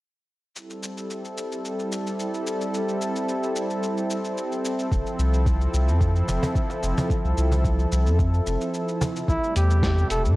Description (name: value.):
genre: organic downtempo.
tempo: 110 BPM.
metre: 4/4.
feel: straight.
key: A minor.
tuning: A4 = 438 Hz.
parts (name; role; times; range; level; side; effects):
warm analog pad; sustained chords; 0.6-10.4 s; C3 to A4; -27 LUFS; equal; chorus, tremolo, sidechain pumping.
dusty soul sampler-style drum kit; drums; 0.6-10.4 s; cabasa, hi-hat, snare drum; -34 LUFS; equal; none.
warm sub bass; bass; 4.9-10.4 s; E1 to A2; -21 LUFS; equal; transformer saturation, sidechain pumping.
electronic kick drum; drums; 4.9-9.9 s; none; -24 LUFS; equal; overdrive.
cajon; percussion; 5.6-9.1 s; none; -29 LUFS; equal; none.
trumpet with bucket mute; melody; 9.3-10.2 s; E4 to A4; -26 LUFS; equal; none.
room: moderate echo chamber reverb, RT60 1.8 s, digital ambience.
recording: worn, warbling old tape, cassette tape, warbly pitch drift.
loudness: -22 LUFS.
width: side -19 dB against mid.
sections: 0.6-9.3 A section; 9.3-10.4 B section.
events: break 8.7-9.3.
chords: 0.6 Am7; 4.9 Fmaj7; 9.3 Am7.